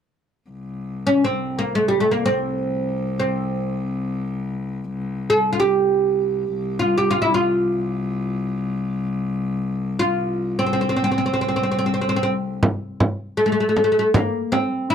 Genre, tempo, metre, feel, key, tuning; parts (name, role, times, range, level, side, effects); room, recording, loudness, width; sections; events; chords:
Turkish makam ensemble; free time; C makam hicaz; A4 = 441 Hz
rich cello; drone; 0.5-12.7 s; C2; -27 LUFS; left 2 dB; stereo widening
oud; melody; 1.1-14.9 s; G3 to A4-40c; -19 LUFS; equal
frame drum; percussion; 12.6-14.7 s; -20 LUFS; right 1 dB
little or no reverb; dry, close 1970s-style studio recording; -19 LUFS; side -8 dB against mid
0.5-12.6 A section; 12.6-14.9 B section